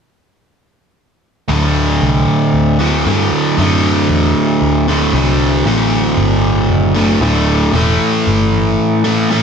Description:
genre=rock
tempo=115 BPM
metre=4/4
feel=straight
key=D mixolydian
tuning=A4 = 441 Hz
part: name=biting overdriven guitar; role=riff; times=1.5-9.4 s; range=D2 to A3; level=-12 LUFS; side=equal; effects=none
part: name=vintage muted picked electric bass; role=bass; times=1.5-8.8 s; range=D1 to G2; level=-16 LUFS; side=equal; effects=none
room=moderate large studio reverb, RT60 0.8 s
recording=none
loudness=-11 LUFS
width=side -6 dB against mid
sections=1.5-9.4 A section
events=none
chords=1.5 D7; 7.7 A5

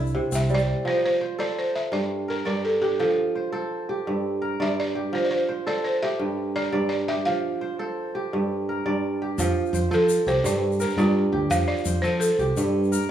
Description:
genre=west african traditional, West African string and xylophone music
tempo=113 BPM (dotted quarters)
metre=12/8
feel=straight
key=F major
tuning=A4 = 441 Hz
part: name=kora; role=arpeggios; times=0.0-13.1 s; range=G2 to D5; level=-25 LUFS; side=right 2 dB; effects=none
part: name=modern bright fingered electric bass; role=bass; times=0.0-0.7, 9.4-13.0 s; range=C2 to F3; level=-25 LUFS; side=equal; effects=none
part: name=egg shaker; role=percussion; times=0.1-0.6, 9.4-13.1 s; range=none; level=-37 LUFS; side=left 7 dB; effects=none
part: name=balafon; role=melody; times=0.4-12.7 s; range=F4 to F5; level=-25 LUFS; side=equal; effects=none
room=moderate recital hall reverb, RT60 1.6 s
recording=small room reverb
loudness=-22 LUFS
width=side -10 dB against mid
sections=0.9-9.4 A section; 9.4-13.1 B section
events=balafon solo 9.4-13.1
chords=0.0 C; 0.9 F; 1.9 Gm; 3.0 F; 4.1 Gm; 5.1 F; 6.2 Gm; 7.3 F; 8.3 Gm; 9.4 F; 10.4 Gm; 11.5 F; 12.6 Gm

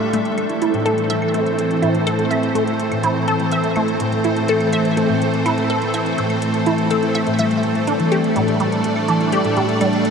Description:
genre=ambient, sequencer-driven space music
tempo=124 BPM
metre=4/4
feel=straight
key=A minor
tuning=A4 = 440 Hz
part: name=evolving wavetable pad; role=sustained chords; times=0.0-10.1 s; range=E3 to D5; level=-19 LUFS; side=equal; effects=ensemble chorus, built-in reverb
part: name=concert harp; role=arpeggios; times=0.0-10.1 s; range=A2 to A4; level=-23 LUFS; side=equal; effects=auto-pan, tape echo
part: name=resonant blip pluck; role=riff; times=0.0-9.9 s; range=G3 to E5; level=-21 LUFS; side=right 1 dB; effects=phaser, tape echo
part: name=electronic hi-hat and claves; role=percussion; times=0.1-10.1 s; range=none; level=-36 LUFS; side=equal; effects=tape echo
room=wet huge ambient reverb, RT60 8.5 s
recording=in a vast, echoing space, cassette tape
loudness=-16 LUFS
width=side -6 dB against mid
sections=0.0-10.1 A section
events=none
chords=0.1 Am; 7.9 Gsus2

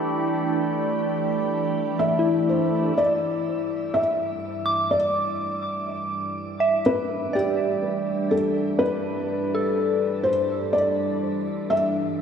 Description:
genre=ambient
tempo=62 BPM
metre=4/4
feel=straight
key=unclear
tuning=A4 = 439 Hz
part: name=evolving wavetable pad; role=sustained chords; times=0.0-12.2 s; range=G2 to G4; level=-28 LUFS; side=right 2 dB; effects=phaser, built-in reverb, shimmer reverb
part: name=soft synth bell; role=arpeggios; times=0.0-12.2 s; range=E4 to D6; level=-26 LUFS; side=left 1 dB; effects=chorus, phaser, shimmer reverb, diffuse ambient delay
part: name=analog drone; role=drone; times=4.8-12.2 s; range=G3 to D4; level=-31 LUFS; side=equal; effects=chorus, phaser
part: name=glass harmonica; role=texture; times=0.0-3.0 s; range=D5 to B5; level=-36 LUFS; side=right 2 dB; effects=shimmer reverb
part: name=felt-muted upright piano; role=melody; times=2.0-12.2 s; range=G4 to E5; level=-24 LUFS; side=left 1 dB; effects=shimmer reverb, diffuse ambient delay
room=wet concert hall reverb, RT60 2.2 s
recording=none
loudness=-21 LUFS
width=side -7 dB against mid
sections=0.0-3.0 A section; 3.0-12.2 B section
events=fade-in on ambient pad 3.0-12.2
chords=0.0 G; 3.0 Em7/G

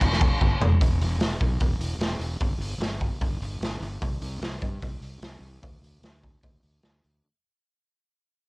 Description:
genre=hard rock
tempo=149 BPM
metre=4/4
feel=straight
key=E minor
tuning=A4 = 442 Hz
part: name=fuzz fingered electric bass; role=bass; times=0.0-7.2 s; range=E1 to G2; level=-30 LUFS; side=equal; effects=overdrive
part: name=raw garage drum kit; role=drums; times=0.0-7.1 s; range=crash cymbal, hi-hat, kick drum, snare drum, toms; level=-24 LUFS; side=equal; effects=cassette tape
room=little or no reverb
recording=home recording on cassette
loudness=-24 LUFS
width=side -30 dB against mid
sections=0.8-7.2 A section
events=drum fill 0.4-0.8; fade-out 0.8-7.2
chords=none

